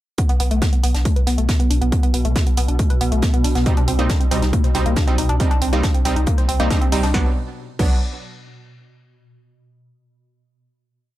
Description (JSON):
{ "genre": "driving peak-time techno", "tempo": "138 BPM", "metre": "4/4", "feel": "straight", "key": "B phrygian", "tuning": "A4 = 440 Hz", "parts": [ { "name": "woody wave-folded pluck", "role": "riff", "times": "0.2-8.0 s", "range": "A3 to C5", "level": "-24 LUFS", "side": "left 1 dB", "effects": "chorus, overdrive, sidechain pumping, tape echo" }, { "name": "swarming drone", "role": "drone", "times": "0.9-7.2 s", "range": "B2", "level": "-30 LUFS", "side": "equal", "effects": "built-in reverb, sidechain pumping" }, { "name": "electronic kick drum", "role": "drums", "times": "0.2-7.9 s", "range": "none", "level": "-18 LUFS", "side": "equal", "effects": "none" }, { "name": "soft brush drum kit", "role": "drums", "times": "0.2-7.1 s", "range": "hi-hat, snare drum", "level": "-32 LUFS", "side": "right 2 dB", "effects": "sidechain pumping on hats, high-pass filter on hats, high-pass filter on snare, high-pass filter on room" }, { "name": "techno drum kit", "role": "drums", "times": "0.2-7.9 s", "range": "crash cymbal, hi-hat, snare drum", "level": "-29 LUFS", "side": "right 1 dB", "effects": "none" }, { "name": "saturated sub bass", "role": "bass", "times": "0.4-8.0 s", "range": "B1 to C2", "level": "-21 LUFS", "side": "equal", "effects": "tube saturation, sidechain pumping, low-pass filter" }, { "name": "supersaw stab", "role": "stabs", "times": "3.7-8.0 s", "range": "F#3 to Eb4", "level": "-24 LUFS", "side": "right 3 dB", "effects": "cassette tape, sidechain pumping, digital delay" } ], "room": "little or no reverb", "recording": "dark, warm production", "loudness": "-16 LUFS", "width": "side -15 dB against mid", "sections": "0.2-7.1 groove; 7.1-8.9 final chord", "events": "filter sweep on synth arpeggio sound 0.2-7.1", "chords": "0.2 N.C.; 3.7 Cm; 7.1 Bm", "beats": "| 0.18 0.62 1.05 1.49 | 1.92 2.36 2.79 3.23 | 3.66 4.10 4.53 4.97 | 5.40 5.83 6.27 6.71 | 7.14 7.58" }